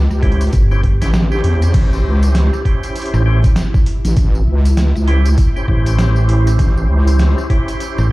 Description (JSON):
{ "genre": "glitch hop", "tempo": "99 BPM", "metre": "4/4", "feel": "swing 60% on 16ths", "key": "unclear", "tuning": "A4 = 440 Hz", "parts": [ { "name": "wobble bass", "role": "bass", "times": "0.0-7.4 s", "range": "A1 to E2", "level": "-12 LUFS", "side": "equal", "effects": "chorus, tube saturation" }, { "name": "ethereal airy pad", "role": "texture", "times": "0.0-8.1 s", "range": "E4 to G4", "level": "-27 LUFS", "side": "equal", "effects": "ensemble chorus, built-in reverb, sidechain pumping" }, { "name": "boom bap sampler-style drum kit", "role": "drums", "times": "0.1-8.1 s", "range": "crash cymbal, hi-hat, rim click, snare drum", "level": "-24 LUFS", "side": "equal", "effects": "overdrive" }, { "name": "tambourine", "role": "percussion", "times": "0.1-8.1 s", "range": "none", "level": "-36 LUFS", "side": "left 2 dB", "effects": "none" }, { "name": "percussive tonewheel organ", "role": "stabs", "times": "0.2-8.1 s", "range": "C#4 to B#4", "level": "-23 LUFS", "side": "right 1 dB", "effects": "chorus vibrato, slow rotary speaker, sidechain pumping, digital delay" }, { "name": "electronic kick drum", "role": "drums", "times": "0.2-7.6 s", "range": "none", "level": "-14 LUFS", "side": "equal", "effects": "overdrive" }, { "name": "fingered electric bass", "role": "bass", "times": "0.5-8.1 s", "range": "G1 to A1", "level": "-13 LUFS", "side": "equal", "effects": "none" } ], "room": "digital ambience", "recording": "played on a big sound system in a bare room, large studio reverb, vinyl crackle", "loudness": "-12 LUFS", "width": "side -20 dB against mid", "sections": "0.0-8.1 A section", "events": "none", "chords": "0.0 A7#9", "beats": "0.53 1.14 | 1.74 2.35 2.96 3.56 | 4.17 4.77 5.38 5.99 | 6.59 7.20 7.80" }